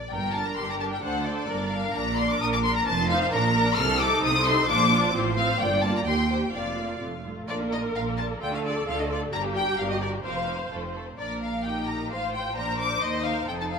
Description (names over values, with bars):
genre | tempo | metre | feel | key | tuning
quick classical-period movement for string orchestra | 130 BPM | 2/4 | straight | G minor, Bb major from 3.8 s | A4 = 438 Hz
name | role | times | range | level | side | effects
warm symphonic violin section | melody | 0.0-13.8 s | C5 to F6 | -27 LUFS | left 4 dB | none
warm symphonic violin section | second line | 0.1-13.8 s | A3 to G5 | -32 LUFS | left 2 dB | none
rich symphonic cello section | bass | 0.1-13.8 s | D2 to D3 | -31 LUFS | right 3 dB | none
rich symphonic double bass section | bass | 0.1-13.8 s | F1 to Eb2 | -32 LUFS | right 4 dB | none
warm symphonic viola section | accompaniment | 0.3-13.8 s | A3 to C5 | -31 LUFS | right 1 dB | none
room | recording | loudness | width
moderate recital hall reverb, RT60 1.7 s | minimal, uncompressed stereo recording | -23 LUFS | side -6 dB against mid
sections
0.1-7.5 A section; 7.5-13.8 B section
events
none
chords
0.1 Gm; 1.0 D7; 1.5 Gm; 2.0 Bb; 2.9 F7; 3.3 Bb; 3.8 Cm69; 4.7 Bb; 5.1 F/A; 5.6 Gm7; 6.1 Cm7/Eb; 6.5 Bb/F; 7.0 F; 7.5 Bb; 8.4 Dm; 9.3 Gm; 10.2 Fsus4; 11.2 Bb; 12.1 F/A; 12.6 Bb; 13.0 Cm/Eb